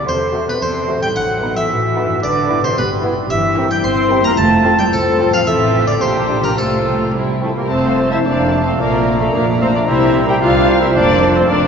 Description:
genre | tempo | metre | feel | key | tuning
cinematic | 111 BPM | 2/4 | straight | E minor, F major from 3.3 s | A4 = 440 Hz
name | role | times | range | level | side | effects
harpsichord | melody | 0.0-7.1 s | A4 to C6 | -25 LUFS | left 1 dB | none
silver concert flute | second line | 0.0-11.7 s | A4 to C6 | -25 LUFS | left 1 dB | none
warm cor anglais | second line | 0.0-11.7 s | A3 to A5 | -20 LUFS | right 2 dB | none
mellow French horn section | sustained chords | 0.0-11.7 s | A3 to C5 | -19 LUFS | left 3 dB | none
concert harp | arpeggios | 0.0-11.7 s | F2 to C5 | -25 LUFS | left 3 dB | none
muted chamber cello section | bass | 0.0-11.7 s | F2 to C4 | -22 LUFS | right 2 dB | none
muted chamber double bass section | bass | 0.1-11.7 s | F1 to E2 | -23 LUFS | right 3 dB | none
muted chamber violin section | melody | 0.3-11.7 s | E4 to A5 | -26 LUFS | left 2 dB | none
mellow clarinet | second line | 0.3-11.7 s | D#4 to D5 | -26 LUFS | equal | none
muted chamber violin section | second line | 0.3-11.7 s | C4 to G5 | -25 LUFS | left 2 dB | none
mellow bassoon | accompaniment | 0.3-11.7 s | F3 to D4 | -25 LUFS | right 3 dB | none
muted chamber viola section | accompaniment | 0.3-11.6 s | F3 to E4 | -25 LUFS | right 2 dB | none
room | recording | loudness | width
wet cathedral reverb, RT60 5.0 s | recorded in a church or concert hall, nothing above 7.8 kHz | -13 LUFS | side -6 dB against mid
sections
0.0-7.7 A section; 7.7-11.7 B section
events
none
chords
0.1 F#dim/E; 1.2 B7/A; 2.2 Em/G; 3.3 C7/G; 4.4 F; 5.5 F/A; 6.0 Gm/Bb; 6.6 F/C; 7.1 C; 7.7 F; 8.8 Bbmaj7; 9.9 C5; 11.0 F

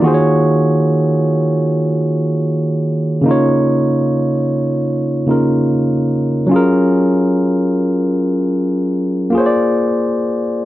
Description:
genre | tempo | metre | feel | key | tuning
R&B | 74 BPM | 4/4 | swing 56% on 16ths | unclear | A4 = 440 Hz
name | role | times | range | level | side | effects
barky tine electric piano | solo | 0.0-10.7 s | Db3 to D5 | -13 LUFS | equal | none
room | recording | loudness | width
wet studio reverb, RT60 0.6 s | none | -13 LUFS | side -15 dB against mid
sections
0.0-6.5 A section; 6.5-10.7 B section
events
none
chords
0.0 Ebm11; 3.3 Db69; 6.5 Gbmaj9; 9.3 Bb7

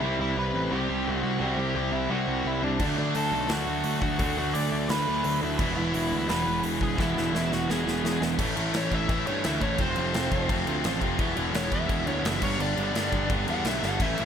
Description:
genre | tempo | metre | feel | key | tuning
punk rock | 172 BPM | 4/4 | straight | unclear | A4 = 440 Hz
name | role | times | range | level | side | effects
smooth overdriven lead guitar | melody | 0.0-14.2 s | D4 to D6 | -31 LUFS | equal | none
distorted electric guitar | riff | 0.0-14.2 s | E2 to D4 | -30 LUFS | right 8 dB | distortion
tight distorted guitar | riff | 0.0-14.2 s | G2 to F4 | -31 LUFS | left 10 dB | distortion
fuzz picked electric bass | bass | 0.0-14.2 s | E1 to G2 | -31 LUFS | equal | overdrive
big rock drum kit | drums | 2.8-14.2 s | crash cymbal, hi-hat, kick drum, snare drum, splash cymbal | -31 LUFS | equal | none
room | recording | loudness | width
light reverb | none | -24 LUFS | side -8 dB against mid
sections
0.0-8.4 A section; 8.4-14.2 B section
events
half time 0.0-8.4; drum fill 7.0-8.4, 13.8; lead electric guitar solo 8.4-14.2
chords
0.0 C; 2.8 D; 5.6 E; 8.4 A; 9.8 F; 11.2 E; 12.4 G

